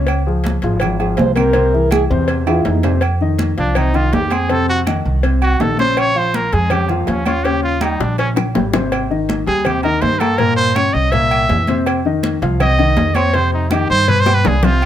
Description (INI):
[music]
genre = Afro-Cuban jazz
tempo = 163 BPM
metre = 4/4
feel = straight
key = F minor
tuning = A4 = 440 Hz
[part]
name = dark grand piano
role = accompaniment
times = 0.0-14.8 s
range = Bb2 to Db6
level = -19 LUFS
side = left 4 dB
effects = none
[part]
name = upright bass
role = bass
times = 0.0-14.9 s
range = Ab1 to G2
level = -18 LUFS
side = right 1 dB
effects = none
[part]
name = agogo bells and timbales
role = percussion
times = 0.1-14.9 s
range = none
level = -24 LUFS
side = right 4 dB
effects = none
[part]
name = claves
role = percussion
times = 0.1-14.9 s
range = none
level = -32 LUFS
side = right 9 dB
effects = none
[part]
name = congas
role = percussion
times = 0.1-14.9 s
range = none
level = -25 LUFS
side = left 1 dB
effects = none
[part]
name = cowbell and bongos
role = percussion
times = 0.1-14.8 s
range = none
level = -23 LUFS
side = left 3 dB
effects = none
[part]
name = mellow French horn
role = second line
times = 1.2-2.9 s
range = Eb4 to C5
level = -17 LUFS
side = right 2 dB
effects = none
[part]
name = bright trumpet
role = melody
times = 3.6-14.9 s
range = Bb3 to E5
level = -17 LUFS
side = right 2 dB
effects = plate reverb
[sound]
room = moderate club reverb, RT60 0.7 s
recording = none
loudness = -13 LUFS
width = side -11 dB against mid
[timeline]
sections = 0.0-3.0 A section; 3.0-14.8 A section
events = French horn solo 0.0-3.0; drum fill 2.5-3.0, 8.0-8.9, 14.3-14.8; trumpet solo 3.0-14.9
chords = 0.1 Dbmaj7; 1.6 Caug7; 3.0 F5; 6.0 Bbm7; 7.5 Eb6; 8.9 Abmaj9; 10.4 Gdim; 11.1 C7; 11.9 F5; 14.1 G